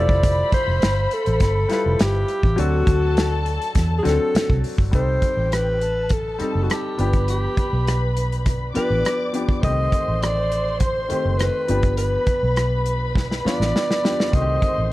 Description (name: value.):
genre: lush 1970s-style soul.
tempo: 102 BPM.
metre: 4/4.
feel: straight.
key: G major.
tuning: A4 = 440 Hz.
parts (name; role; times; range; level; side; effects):
warm alto saxophone; melody; 0.0-14.9 s; F#4 to Eb5; -23 LUFS; equal; analog delay.
dark studio string section; second line; 0.0-14.9 s; G4 to D6; -29 LUFS; left 1 dB; none.
clear grand piano; accompaniment; 0.0-14.9 s; Eb3 to B4; -28 LUFS; left 3 dB; none.
vintage muted fingered electric bass; bass; 0.0-14.9 s; F1 to E2; -22 LUFS; equal; none.
warm soul drum kit; drums; 0.1-14.8 s; hi-hat, kick drum, rim click, snare drum; -21 LUFS; equal; none.
room: little or no reverb.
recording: dark, warm production.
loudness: -18 LUFS.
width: side -17 dB against mid.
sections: 0.0-4.9 A section; 4.9-14.9 B section.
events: drum fill 13.2-14.3.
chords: 0.0 Fmaj9; 2.6 D7; 4.9 Cm6; 7.0 G7; 9.6 Cm6; 11.7 G7; 14.3 Cm6.